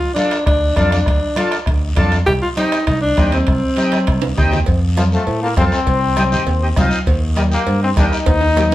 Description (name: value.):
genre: latin, cumbia.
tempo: 200 BPM.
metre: 4/4.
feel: straight.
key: C dorian.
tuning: A4 = 442 Hz.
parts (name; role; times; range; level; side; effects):
breathy alto saxophone; melody; 0.0-4.3 s; C4 to G4; -18 LUFS; equal; none.
congas; percussion; 0.0-8.7 s; none; -24 LUFS; equal; none.
accordion; accompaniment; 0.2-8.7 s; Bb3 to A4; -22 LUFS; left 1 dB; none.
bombo; percussion; 0.2-8.7 s; none; -19 LUFS; equal; none.
guiro; percussion; 0.2-8.7 s; none; -32 LUFS; left 3 dB; none.
timbales and cowbell; percussion; 0.2-8.7 s; none; -27 LUFS; right 5 dB; none.
modern bright fingered electric bass; bass; 0.5-8.7 s; C2 to A2; -18 LUFS; equal; none.
bright trombone; second line; 5.0-8.7 s; F3 to Eb4; -19 LUFS; left 3 dB; none.
room: moderate studio reverb, RT60 0.6 s.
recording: heard from further back in the room.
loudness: -13 LUFS.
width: side -15 dB against mid.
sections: 0.0-4.7 A section; 4.7-8.7 B section.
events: drum fill 3.8-4.7, 8.3-8.7; trombone solo 4.7-8.7.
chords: 0.0 Dm; 2.3 Cm; 4.7 F; 5.9 Cm; 7.1 Eb.